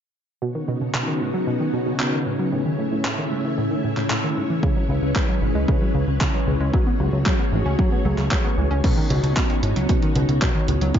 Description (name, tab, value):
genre	italo disco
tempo	114 BPM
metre	4/4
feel	straight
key	unclear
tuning	A4 = 440 Hz
part	string machine, full ensemble	sustained chords	0.4-11.0 s	C#3 to E5	-25 LUFS	left 1 dB	ensemble chorus
part	analog pluck	arpeggios	0.4-11.0 s	G#2 to C#4	-26 LUFS	right 2 dB	chorus, ping-pong delay
part	gated 80s digital drum machine	drums	0.9-11.0 s	crash cymbal, handclaps, hi-hat	-29 LUFS	equal	gated reverb
part	electronic kick drum	drums	4.6-11.0 s	none	-22 LUFS	equal	overdrive
part	fat analog bass	bass	4.9-10.9 s	G#1 to C#2	-22 LUFS	equal	none
room	light reverb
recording	dark, warm production, nothing above 7.5 kHz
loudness	-19 LUFS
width	side -9 dB against mid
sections	0.4-8.8 A section; 8.8-11.0 B section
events	filter sweep on synth arpeggio sound 0.4-8.8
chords	0.4 Badd9; 2.5 A; 4.6 C#m7; 6.7 F#madd9; 8.8 Badd9